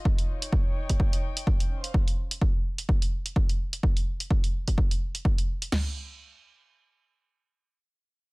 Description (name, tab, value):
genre	piano house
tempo	127 BPM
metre	4/4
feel	swing 57% on 16ths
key	unclear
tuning	A4 = 440 Hz
part	warm chamber string section	texture	0.0-1.9 s	Db4 to G5	-40 LUFS	left 2 dB	sidechain pumping
part	house drum kit	drums	0.1-5.8 s	crash cymbal, kick drum, snare drum, toms	-25 LUFS	equal	studio reverb
part	electronic hi-hat	drums	0.2-5.7 s	none	-33 LUFS	right 2 dB	studio reverb
room	little or no reverb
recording	echo-heavy mix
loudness	-24 LUFS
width	side -28 dB against mid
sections	0.0-5.7 A section; 5.7-8.3 B section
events	none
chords	0.0 Eb7; 1.7 Dbmaj7; 3.6 N.C.